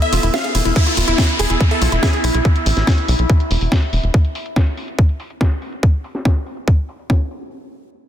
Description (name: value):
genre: psychedelic trance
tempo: 142 BPM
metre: 4/4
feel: straight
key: unclear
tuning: A4 = 438 Hz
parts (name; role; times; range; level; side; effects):
- supersaw stab; melody; 0.0-2.2 s; E4 to F5; -23 LUFS; equal; phaser, sidechain pumping, tape echo
- overtone-sweeping drone; sustained chords; 0.0-4.1 s; E4; -25 LUFS; right 1 dB; chorus, built-in reverb, sidechain pumping
- woody wave-folded pluck; riff; 0.0-2.4 s; E4 to E5; -25 LUFS; left 1 dB; chorus, auto-pan, sidechain pumping, tape echo
- garage drum kit; drums; 0.0-7.5 s; crash cymbal, hi-hat, ride cymbal, snare drum; -24 LUFS; left 1 dB; low-pass filter on hats, low-pass filter on cymbals, low-pass filter on snare
- airy breathy pad; texture; 0.0-4.1 s; B3 to B5; -29 LUFS; right 1 dB; chorus, sidechain pumping
- tight sequencer bass; bass; 0.1-4.1 s; E1 to B1; -18 LUFS; equal; none
- electronic kick drum; drums; 0.8-7.2 s; none; -14 LUFS; equal; none
- downlifter; sound effects; 0.8-4.1 s; none; -25 LUFS; equal; none
room: light reverb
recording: dense, heavily limited modern master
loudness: -14 LUFS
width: side -10 dB against mid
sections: 0.8-7.5 A section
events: kick drops out 0.3-0.8; band accent 0.3; fade-out on analog synth pad 0.8-4.1; filter sweep on drum 0.8-7.5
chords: 0.0 E5; 7.5 N.C.